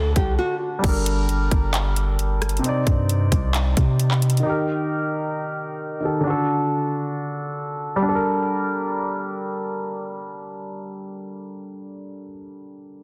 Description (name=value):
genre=hip hop, trap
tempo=133 BPM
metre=4/4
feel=half-time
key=G harmonic minor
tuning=A4 = 435 Hz
part: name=nylon-string guitar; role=melody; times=0.0-0.6 s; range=F#4 to A4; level=-28 LUFS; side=equal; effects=none
part: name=dark baby grand piano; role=accompaniment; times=0.0-13.0 s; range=C3 to D5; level=-27 LUFS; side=equal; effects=low-pass filter
part: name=long sustained 808-style bass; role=bass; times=0.0-4.4 s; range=G1 to C3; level=-23 LUFS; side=equal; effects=none
part: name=trap drum kit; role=drums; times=0.2-4.4 s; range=crash cymbal, handclaps, hi-hat, kick drum, rim click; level=-26 LUFS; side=equal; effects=none
room=light reverb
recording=dense, heavily limited modern master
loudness=-23 LUFS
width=mono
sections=0.8-8.1 A section; 8.1-11.7 B section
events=break 0.4-0.8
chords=0.0 D; 0.8 Gmadd9; 2.6 Cmadd9; 4.4 Eb; 6.3 D; 8.1 Gmadd9